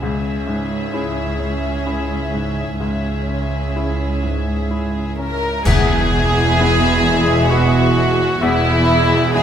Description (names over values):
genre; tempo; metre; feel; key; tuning
cinematic, emotional film score for orchestra; 65 BPM; 3/4; rubato; E major; A4 = 441 Hz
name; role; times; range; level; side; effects
warm studio violin section; melody; 0.0-9.4 s; E5; -28 LUFS; left 3 dB; none
warm studio violin section; second line; 0.0-9.4 s; E4 to A#4; -21 LUFS; left 2 dB; none
bright baby grand piano; accompaniment; 0.0-9.4 s; C#2 to G#4; -25 LUFS; left 3 dB; none
dark chamber viola section; accompaniment; 0.0-9.4 s; B3 to G#4; -26 LUFS; right 2 dB; none
rich studio double bass section; bass; 0.0-9.4 s; E1 to C#2; -22 LUFS; right 2 dB; none
warm studio cello section; bass; 0.0-9.4 s; C#2 to E2; -23 LUFS; right 2 dB; none
cymbal swell, clash cymbals and concert bass drum; percussion; 2.8-7.5 s; none; -23 LUFS; equal; none
mellow cor anglais; second line; 5.2-9.4 s; E4 to A#4; -25 LUFS; right 2 dB; none
flute section; second line; 5.7-8.8 s; E5; -28 LUFS; left 5 dB; none
warm clarinet; second line; 5.7-8.8 s; B3; -27 LUFS; left 3 dB; none
mellow French horn section; sustained chords; 5.7-9.4 s; G#3 to E4; -25 LUFS; left 3 dB; none
timpani; percussion; 5.7-7.0 s; E2; -22 LUFS; left 2 dB; none
room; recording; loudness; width
moderate scoring stage reverb, RT60 1.8 s; none; -15 LUFS; side -9 dB against mid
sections
0.0-5.7 A section; 5.7-9.4 B section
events
band accent 5.7-6.6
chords
0.0 C#m; 5.7 E